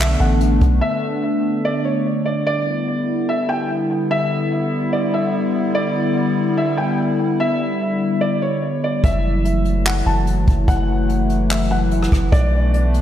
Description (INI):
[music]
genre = hip hop, atmospheric cloud-rap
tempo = 146 BPM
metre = 4/4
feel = half-time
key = E minor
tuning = A4 = 440 Hz
[part]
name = felt-muted upright piano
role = melody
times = 0.0-13.0 s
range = C#5 to A5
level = -23 LUFS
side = equal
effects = low-pass filter, analog delay
[part]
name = hollow soft pad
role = sustained chords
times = 0.0-13.0 s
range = D3 to E4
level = -20 LUFS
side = left 1 dB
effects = chorus, sidechain pumping
[part]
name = long sustained 808-style bass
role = bass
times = 0.0-0.8, 9.0-13.0 s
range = F#1 to B1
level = -18 LUFS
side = equal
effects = none
[part]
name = jazz brush drum kit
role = drums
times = 0.0-0.7, 9.0-13.0 s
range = handclaps, hi-hat, kick drum, rim click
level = -20 LUFS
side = equal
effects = none
[sound]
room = moderate lush hall reverb, RT60 1.9 s, studio ambience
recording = dreamy mix soaked in reverb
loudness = -16 LUFS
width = side -11 dB against mid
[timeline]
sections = 0.0-2.5 A section; 2.5-13.0 B section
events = break 0.8-2.5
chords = 0.0 Bm7; 2.5 Em7; 9.0 F#m7; 12.3 Bm7